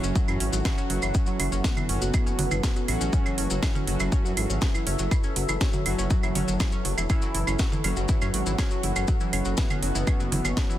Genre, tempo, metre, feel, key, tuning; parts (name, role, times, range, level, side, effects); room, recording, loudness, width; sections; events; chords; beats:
melodic techno; 121 BPM; 4/4; straight; F# minor; A4 = 440 Hz
deep dark ambient pad; sustained chords; 0.0-10.8 s; E4 to F#5; -35 LUFS; left 1 dB; chorus, built-in reverb, sidechain pumping
analog pluck; arpeggios; 0.0-10.8 s; E3 to C#5; -34 LUFS; equal; chorus, sidechain pumping, digital delay
analog synth brass; stabs; 0.0-10.8 s; F#3 to F#4; -33 LUFS; right 3 dB; chorus, sidechain pumping, digital delay
swelling detuned saw bass; bass; 0.0-10.5 s; E1 to F#2; -28 LUFS; equal; sidechain pumping
maracas; percussion; 0.0-10.8 s; -36 LUFS; left 5 dB
electronic kick drum; drums; 0.2-10.7 s; -25 LUFS; equal
house drum kit; drums; 0.3-10.7 s; claves, congas, hi-hat, snare drum; -31 LUFS; right 3 dB
fat analog lead; melody; 1.6-10.8 s; F#3 to E4; -36 LUFS; equal; lush chorus, sidechain pumping, dub echo
little or no reverb; dense, heavily limited modern master; -23 LUFS; side -13 dB against mid
0.0-10.8 A section
0.0 F#m7
0.16 0.65 | 1.15 1.64 2.14 2.63 | 3.13 3.63 4.12 4.62 | 5.11 5.61 6.11 6.60 | 7.10 7.59 8.09 8.59 | 9.08 9.58 10.07 10.57